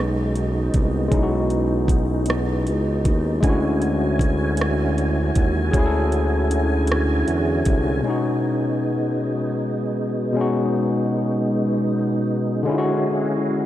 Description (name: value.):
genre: slow six-eight R&B.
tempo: 52 BPM (dotted quarters).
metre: 6/8.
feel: straight.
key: B major.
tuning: A4 = 440 Hz.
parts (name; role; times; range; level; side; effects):
overdriven tine electric piano; accompaniment; 0.0-13.7 s; B2 to A4; -22 LUFS; left 2 dB; none.
tonewheel organ; sustained chords; 0.0-13.7 s; D3 to G#5; -25 LUFS; right 2 dB; chorus vibrato, slow rotary speaker.
smooth synth bass; bass; 0.0-8.0 s; B1 to E2; -22 LUFS; equal; none.
smooth R&B drum kit; drums; 0.4-7.8 s; hi-hat, kick drum, rim click; -23 LUFS; equal; vintage 12-bit sampler grit.
room: moderate huge ambient reverb, RT60 7.0 s.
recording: dreamy mix soaked in reverb.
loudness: -18 LUFS.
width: side -13 dB against mid.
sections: 0.0-8.0 A section; 8.0-13.7 B section.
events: none.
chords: 0.0 B6; 3.4 Dmaj9#11; 8.0 B6; 12.7 Dmaj9#11.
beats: | 1.12 2.27 | 3.43 4.58 | 5.74 6.89 | 8.04 9.20 | 10.35 11.50 | 12.66.